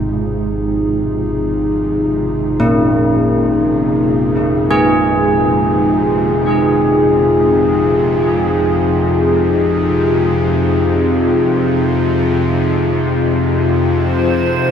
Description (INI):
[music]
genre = dark ambient drone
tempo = free time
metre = none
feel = none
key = F minor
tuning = A4 = 438 Hz
[part]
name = dark analog pad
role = sustained chords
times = 0.0-14.7 s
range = F3 to Ab4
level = -15 LUFS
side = left 1 dB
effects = chorus
[part]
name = old church bells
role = arpeggios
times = 0.0-11.8 s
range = Ab2 to Ab4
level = -18 LUFS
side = right 1 dB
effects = diffuse ambient delay
[part]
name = bowed-like drone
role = drone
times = 0.0-14.7 s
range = F2 to C3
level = -17 LUFS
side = left 1 dB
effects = built-in reverb
[part]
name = icy glass pad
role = texture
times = 14.1-14.7 s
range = C5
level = -18 LUFS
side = left 1 dB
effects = chorus, built-in reverb, phaser
[sound]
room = wet cathedral reverb, RT60 5.0 s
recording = dark, warm production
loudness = -12 LUFS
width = side -8 dB against mid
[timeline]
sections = 0.0-14.7 A section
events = fade-in on synth drone 0.0-14.7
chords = 0.0 Fmadd11